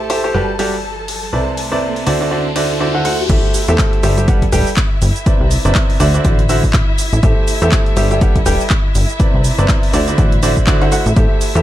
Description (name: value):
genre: piano house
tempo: 122 BPM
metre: 4/4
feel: swing 58% on 16ths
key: G major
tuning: A4 = 438 Hz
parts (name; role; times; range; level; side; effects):
- warm studio string section; sustained chords; 0.0-11.6 s; E4 to A5; -26 LUFS; left 1 dB; sidechain pumping
- bright baby grand piano; riff; 0.0-11.6 s; C3 to G5; -18 LUFS; right 1 dB; sidechain pumping, ping-pong delay
- plucky analog bass; bass; 0.0-11.6 s; D1 to E2; -17 LUFS; equal; sidechain pumping
- riser; sound effects; 1.2-3.3 s; none; -25 LUFS; equal; none
- house drum kit; drums; 0.1-11.6 s; cabasa, crash cymbal, handclaps, hi-hat; -23 LUFS; equal; studio ambience
- electronic kick drum; drums; 3.3-11.3 s; none; -14 LUFS; equal; studio ambience
room: little or no reverb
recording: none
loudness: -12 LUFS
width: side -13 dB against mid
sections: 0.0-3.3 A section; 3.3-11.6 B section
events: riser 1.2-3.3; drop 3.3-11.6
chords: 0.3 Gmaj9; 1.3 Cmaj9; 2.1 D9; 3.3 Am7; 4.3 Gmaj9; 5.3 Cmaj9; 6.0 D9; 7.2 Am7; 8.2 Gmaj9; 9.2 Cmaj9; 9.9 D9